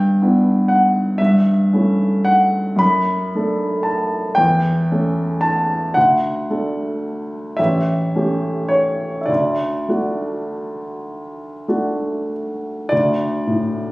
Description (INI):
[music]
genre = classical, romantic nocturne for solo piano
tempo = 32-41 BPM (dotted quarters)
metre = 6/8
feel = rubato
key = D major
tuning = A4 = 442 Hz
[part]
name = warm baby grand piano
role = solo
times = 0.0-13.9 s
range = A1 to B5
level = -16 LUFS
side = equal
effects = none
[sound]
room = wet recital hall reverb, RT60 1.4 s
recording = recorded on a phone in the room, studio reverb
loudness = -16 LUFS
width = side -22 dB against mid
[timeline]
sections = 0.0-12.9 A section; 12.9-13.9 B section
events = none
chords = 0.0 Em7/G; 1.2 A7/G; 2.8 D/F#; 4.4 A7/E; 6.0 D; 7.6 A7; 9.3 D; 12.9 D5